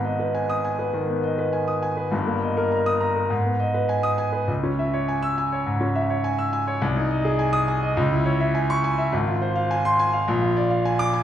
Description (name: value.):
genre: classical, virtuoso piano study.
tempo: 103 BPM.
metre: 4/4.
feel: rubato.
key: G# minor.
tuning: A4 = 440 Hz.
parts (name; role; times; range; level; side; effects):
clear concert grand piano; solo; 0.0-11.2 s; G1 to E6; -20 LUFS; equal; none.
room: wet recital hall reverb, RT60 1.3 s.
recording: recorded in a church or concert hall.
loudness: -20 LUFS.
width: side -10 dB against mid.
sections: 0.0-11.2 A section.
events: none.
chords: 0.0 G#m; 2.1 D#/G; 3.3 G#m; 4.5 C#m; 6.8 G#/B#; 8.0 C#m; 9.1 Fm/Ab; 10.3 Bb7.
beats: 0.34 0.94 1.53 | 2.13 2.71 3.30 3.89 | 4.48 5.08 5.67 6.24 | 6.82 7.39 7.97 8.54 | 9.13 9.70 10.28 10.85.